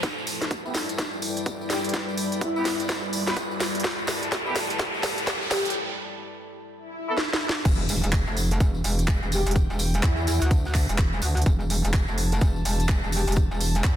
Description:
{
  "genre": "bass house",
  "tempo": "126 BPM",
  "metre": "4/4",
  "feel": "swing 61% on 16ths",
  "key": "E minor",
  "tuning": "A4 = 440 Hz",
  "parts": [
    { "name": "deep dark ambient pad", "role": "sustained chords", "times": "0.0-14.0 s", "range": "G3 to B4", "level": "-36 LUFS", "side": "equal", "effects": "chorus, built-in reverb, sidechain pumping" },
    { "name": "electronic kick drum", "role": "drums", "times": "0.0-14.0 s", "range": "none", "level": "-26 LUFS", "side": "equal", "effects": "high-pass filter on kick, high-pass filter on room" },
    { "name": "garage drum kit", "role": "drums", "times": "0.0-14.0 s", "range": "crash cymbal, handclaps, hi-hat, snare drum", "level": "-28 LUFS", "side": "right 1 dB", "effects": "soft clipping on snare" },
    { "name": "tambourine", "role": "percussion", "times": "0.0-14.0 s", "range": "none", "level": "-38 LUFS", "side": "left 4 dB", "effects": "none" },
    { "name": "riser, swell and impact", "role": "sound effects", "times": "0.0-9.6 s", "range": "none", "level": "-33 LUFS", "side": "equal", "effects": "none" },
    { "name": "airy breathy pad", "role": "texture", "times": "0.0-14.0 s", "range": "E4 to B5", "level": "-36 LUFS", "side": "left 1 dB", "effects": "chorus, sidechain pumping" },
    { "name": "clear horn section", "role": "stabs", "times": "0.7-7.1 s", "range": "B3 to B4", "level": "-33 LUFS", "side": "right 2 dB", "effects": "sidechain pumping, low-pass filter, dub echo" },
    { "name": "breathy flute-like synth lead", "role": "melody", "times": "1.7-5.7, 9.3-13.3 s", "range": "E4 to G4", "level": "-31 LUFS", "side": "left 1 dB", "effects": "ensemble chorus, dub echo" },
    { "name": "metallic wobble bass", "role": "bass", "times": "7.7-14.0 s", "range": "E1 to E2", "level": "-24 LUFS", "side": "equal", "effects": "chorus, tube saturation, sidechain pumping" }
  ],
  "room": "light reverb, digital ambience",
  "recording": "dense, heavily limited modern master",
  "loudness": "-22 LUFS",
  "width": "side -11 dB against mid",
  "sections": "0.0-7.7 A section; 7.7-14.0 B section",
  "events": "build-up 0.0-7.7; drum fill 0.0-5.7, 7.2-7.7; riser 0.0-5.7; filter sweep on horn section 0.0-7.7; break 5.7-7.7; swell 6.8-7.7; drop 7.7-14.0; impact 7.7-9.6",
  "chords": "0.0 Em"
}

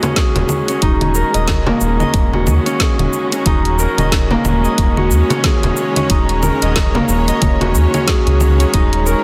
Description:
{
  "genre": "organic downtempo",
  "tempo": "91 BPM",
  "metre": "4/4",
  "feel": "swing 59% on 16ths",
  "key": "unclear",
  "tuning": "A4 = 440 Hz",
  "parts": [
    { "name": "rich studio string section", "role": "sustained chords", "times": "0.0-9.2 s", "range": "Eb3 to Db5", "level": "-24 LUFS", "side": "equal", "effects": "sidechain pumping" },
    { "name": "Celtic harp", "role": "arpeggios", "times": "0.0-9.2 s", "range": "Bb3 to Eb5", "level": "-20 LUFS", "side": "equal", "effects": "low-pass filter, delay" },
    { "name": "afro-pop drum kit", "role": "drums", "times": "0.0-9.2 s", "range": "congas, hi-hat, shaker, snare drum", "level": "-23 LUFS", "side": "equal", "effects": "studio reverb" },
    { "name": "frame drum", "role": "percussion", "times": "0.0-7.7 s", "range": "none", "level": "-26 LUFS", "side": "equal", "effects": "none" },
    { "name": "electronic kick drum", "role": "drums", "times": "0.2-8.9 s", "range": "none", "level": "-19 LUFS", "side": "equal", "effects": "studio reverb" },
    { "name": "round analog bass", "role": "bass", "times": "0.4-9.1 s", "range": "Eb1 to Eb2", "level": "-19 LUFS", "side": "equal", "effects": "sidechain pumping" }
  ],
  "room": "light reverb, studio reverb",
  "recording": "dense, heavily limited modern master",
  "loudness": "-15 LUFS",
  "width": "mono",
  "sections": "0.0-8.7 A section",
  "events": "none",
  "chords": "0.0 Gb69/Eb"
}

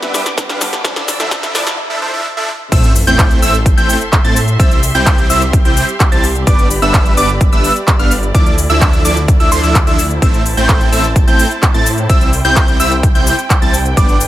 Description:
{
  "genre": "EDM, festival progressive house",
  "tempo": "128 BPM",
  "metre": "4/4",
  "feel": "straight",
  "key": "A minor",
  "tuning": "A4 = 441 Hz",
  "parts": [
    { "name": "fingerpicked steel-string acoustic guitar", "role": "accompaniment", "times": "0.0-1.8 s", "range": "G2 to B4", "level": "-28 LUFS", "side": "left 2 dB", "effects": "none" },
    { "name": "rich studio string section", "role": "sustained chords", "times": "0.0-14.3 s", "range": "D4 to E6", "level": "-24 LUFS", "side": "right 1 dB", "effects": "vintage 12-bit sampler grit, sidechain pumping" },
    { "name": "supersaw chords", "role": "riff", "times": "0.0-14.2 s", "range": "F3 to A5", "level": "-18 LUFS", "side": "right 1 dB", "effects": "sidechain pumping, digital delay" },
    { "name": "wide detuned saw bass", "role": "bass", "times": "0.0-14.3 s", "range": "G1 to A2", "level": "-18 LUFS", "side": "equal", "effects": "chorus, sidechain pumping, high-pass filter" },
    { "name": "big-room dance drum kit", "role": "drums", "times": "0.0-14.3 s", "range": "crash cymbal, handclaps, hi-hat, shaker, snare drum", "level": "-19 LUFS", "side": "left 1 dB", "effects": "overdrive" },
    { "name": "riser and sub drop", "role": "sound effects", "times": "0.0-4.6 s", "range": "none", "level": "-24 LUFS", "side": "equal", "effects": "none" },
    { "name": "electronic kick drum", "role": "drums", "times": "0.4-14.1 s", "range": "none", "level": "-12 LUFS", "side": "equal", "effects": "overdrive" },
    { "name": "plucky unison lead", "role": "arpeggios", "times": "2.7-14.2 s", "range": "C6 to A6", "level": "-17 LUFS", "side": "equal", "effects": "sidechain pumping, digital delay" }
  ],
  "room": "little or no reverb",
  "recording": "high-pass filter",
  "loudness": "-10 LUFS",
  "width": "side -14 dB against mid",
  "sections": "0.0-2.7 A section; 2.7-14.3 B section",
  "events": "build-up 0.0-2.7; drum fill 0.0-1.8; break 1.8-2.7; drop 2.7-14.3; impact 2.7-4.6",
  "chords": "0.0 G; 0.8 Dmadd9; 2.7 Am; 4.6 C; 6.5 G; 8.3 Dmadd9; 10.2 Am; 12.1 C"
}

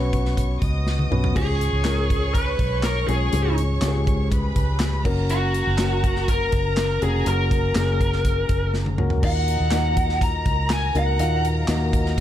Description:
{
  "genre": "piano-driven pop",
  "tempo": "122 BPM",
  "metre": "4/4",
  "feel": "straight",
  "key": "Eb minor",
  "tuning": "A4 = 439 Hz",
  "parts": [
    { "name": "warm symphonic violin section", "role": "second line", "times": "0.0-12.2 s", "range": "Bb4 to Eb6", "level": "-32 LUFS", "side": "right 1 dB", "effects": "none" },
    { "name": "dark upright piano", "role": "accompaniment", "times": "0.0-12.2 s", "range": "Ab2 to F5", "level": "-28 LUFS", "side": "left 3 dB", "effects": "none" },
    { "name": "vintage muted fingered electric bass", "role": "bass", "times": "0.0-12.2 s", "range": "F1 to Eb2", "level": "-23 LUFS", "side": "equal", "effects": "none" },
    { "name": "modern studio drum kit", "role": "drums", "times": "0.1-12.2 s", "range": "crash cymbal, handclaps, hi-hat, kick drum, snare drum, toms", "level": "-25 LUFS", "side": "equal", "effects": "none" },
    { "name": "bluesy overdriven lead guitar", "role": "melody", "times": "1.4-11.4 s", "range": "Gb4 to Bb5", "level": "-25 LUFS", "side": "equal", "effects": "distortion" }
  ],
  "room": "little or no reverb",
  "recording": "dark, warm production",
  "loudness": "-19 LUFS",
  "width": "side -11 dB against mid",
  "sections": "0.0-9.2 A section; 9.2-12.2 A section",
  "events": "drum fill 0.9-1.4, 8.7-9.2",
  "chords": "0.0 Bsus2; 1.4 Db; 5.0 Gb; 9.2 Ebm"
}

